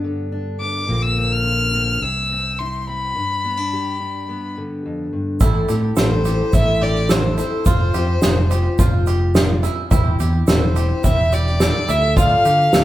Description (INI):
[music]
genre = indie folk with a building arrangement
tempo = 106 BPM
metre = 4/4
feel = straight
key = C major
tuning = A4 = 439 Hz
[part]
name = fingerpicked steel-string acoustic guitar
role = accompaniment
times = 0.0-5.4 s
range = F2 to G4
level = -26 LUFS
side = left 2 dB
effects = none
[part]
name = fingered electric bass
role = bass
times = 0.0-12.8 s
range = E1 to D3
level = -20 LUFS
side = equal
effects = none
[part]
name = warm fiddle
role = melody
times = 0.6-12.8 s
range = C5 to F6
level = -21 LUFS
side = left 1 dB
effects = none
[part]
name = picked twelve-string acoustic guitar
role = accompaniment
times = 5.4-12.8 s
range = A2 to A4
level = -25 LUFS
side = left 3 dB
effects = none
[part]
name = bluegrass banjo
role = arpeggios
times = 5.4-12.8 s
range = E4 to A4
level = -27 LUFS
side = right 7 dB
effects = slapback echo
[part]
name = soft-mallet drum kit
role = drums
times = 5.4-12.8 s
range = kick drum, snare drum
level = -18 LUFS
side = equal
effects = none
[part]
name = egg shaker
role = percussion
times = 5.4-12.8 s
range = none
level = -34 LUFS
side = right 7 dB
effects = none
[sound]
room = moderate large studio reverb, RT60 1.5 s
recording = band playing live in one room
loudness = -16 LUFS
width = side -14 dB against mid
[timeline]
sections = 0.0-5.4 A section; 5.4-12.8 B section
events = break 3.1-5.4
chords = 0.0 G; 0.9 Bbadd9; 2.0 C; 3.1 G; 5.4 Am7; 7.7 Fm; 9.9 C/E; 11.9 Dm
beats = 0.32 | 0.89 1.45 2.02 2.58 | 3.15 3.71 4.28 4.84 | 5.41 5.97 6.53 7.10 | 7.66 8.22 8.79 9.35 | 9.92 10.48 11.04 11.61 | 12.17 12.74